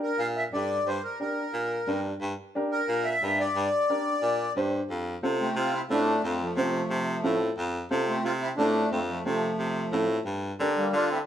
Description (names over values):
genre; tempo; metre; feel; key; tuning
latin, cumbia; 179 BPM; 4/4; straight; unclear; A4 = 441 Hz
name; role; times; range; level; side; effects
accordion; melody; 0.0-11.2 s; F3 to F5; -27 LUFS; equal; light tremolo tuning
dark upright piano; accompaniment; 0.0-10.8 s; C4 to C5; -30 LUFS; right 1 dB; none
bright baritone saxophone; bass; 0.2-11.2 s; F2 to D3; -30 LUFS; equal; none
room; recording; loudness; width
moderate stone room reverb, RT60 1.1 s; band playing live in one room; -25 LUFS; side -10 dB against mid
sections
0.0-4.9 A section; 4.9-11.3 B section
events
none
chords
0.0 Gm; 4.9 F; 10.3 Gm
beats
0.19 0.53 | 0.86 1.20 1.53 1.87 | 2.21 2.54 2.88 3.21 | 3.55 3.89 4.22 4.56 | 4.89 5.23 5.57 5.90 | 6.24 6.57 6.91 7.24 | 7.58 7.91 8.25 8.59 | 8.92 9.26 9.59 9.93 | 10.26 10.60 10.93